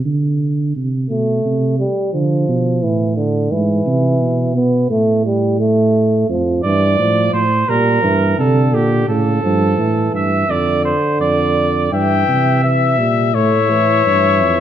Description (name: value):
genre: classical, imitative canzona for brass ensemble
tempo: 86 BPM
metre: 4/4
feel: straight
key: D minor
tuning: A4 = 440 Hz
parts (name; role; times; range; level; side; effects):
- dark tuba; bass; 0.0-14.6 s; F2 to D3; -17 LUFS; right 2 dB; none
- mellow euphonium; accompaniment; 1.1-14.6 s; C#3 to B3; -18 LUFS; equal; none
- clear flugelhorn; second line; 6.6-14.6 s; G4 to E5; -18 LUFS; right 3 dB; none
- warm trumpet; melody; 11.9-14.6 s; C#5 to G5; -16 LUFS; left 12 dB; none
room: moderate recital hall reverb, RT60 1.7 s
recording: none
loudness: -13 LUFS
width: side -10 dB against mid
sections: 0.0-11.9 A section; 11.9-14.6 B section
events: none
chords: 0.0 N.C.; 0.8 Am; 2.1 Dm; 3.5 E/G#; 4.9 Gsus2/A; 6.3 Dm/F; 7.7 Gm; 9.1 A; 10.5 Dm/F; 11.9 Edim/G; 13.3 A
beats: 0.06 | 0.76 1.45 2.14 2.83 | 3.51 4.21 4.90 5.60 | 6.30 6.99 7.69 8.39 | 9.09 9.79 10.50 11.21 | 11.93 12.64 13.35 14.05